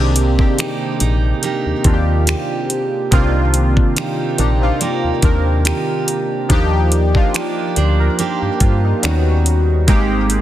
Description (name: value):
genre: contemporary R&B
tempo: 71 BPM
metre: 4/4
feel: swing 54% on 16ths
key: C minor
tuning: A4 = 440 Hz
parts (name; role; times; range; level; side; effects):
- warm analog keys; accompaniment; 0.0-10.4 s; Eb3 to C5; -19 LUFS; left 1 dB; chorus, phaser
- picked steel-string acoustic guitar; arpeggios; 0.0-10.4 s; C3 to Bb4; -22 LUFS; right 5 dB; digital delay
- solid FM bass; bass; 0.0-10.4 s; Ab1 to G2; -16 LUFS; equal; none
- smooth R&B drum kit; drums; 0.2-10.4 s; finger snaps, hi-hat, kick drum; -17 LUFS; equal; soft clipping on snare
room: light reverb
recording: dense, heavily limited modern master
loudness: -14 LUFS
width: side -13 dB against mid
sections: 0.0-10.4 A section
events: none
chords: 0.0 Cm7; 6.5 Ebmaj7; 9.0 Eb7alt; 9.9 Abmaj9